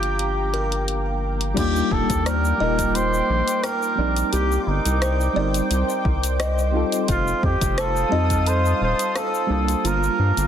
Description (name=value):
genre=sunset chillout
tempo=87 BPM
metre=4/4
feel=straight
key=unclear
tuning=A4 = 440 Hz
part: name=trumpet with cup mute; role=melody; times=0.0-10.5 s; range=Eb4 to C5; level=-25 LUFS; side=right 1 dB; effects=ping-pong delay
part: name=mellow FM electric piano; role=accompaniment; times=0.0-10.5 s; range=F3 to A5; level=-27 LUFS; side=moving between left 6 dB and right 6 dB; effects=chorus, tremolo, auto-pan, ping-pong delay
part: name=lush unison pad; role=sustained chords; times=0.0-10.5 s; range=Bb3 to Eb6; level=-29 LUFS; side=equal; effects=chorus
part: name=buzzing kalimba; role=arpeggios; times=0.0-10.2 s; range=F4 to G5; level=-30 LUFS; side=left 2 dB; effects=ping-pong delay
part: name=round analog bass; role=bass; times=0.0-10.5 s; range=Eb1 to G2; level=-23 LUFS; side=equal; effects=none
part: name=deep house drum kit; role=drums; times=0.0-10.5 s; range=crash cymbal, hi-hat, rim click, shaker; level=-29 LUFS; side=left 1 dB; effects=none
part: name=electronic kick drum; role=drums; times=1.6-8.4 s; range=none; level=-25 LUFS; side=equal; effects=none
room=light reverb, digital ambience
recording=dense, heavily limited modern master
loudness=-19 LUFS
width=side -9 dB against mid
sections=0.0-1.6 A section; 1.6-10.5 B section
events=none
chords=0.0 Gm7; 1.6 Ebmaj7; 4.3 Cm9; 7.1 F7; 9.8 Gm7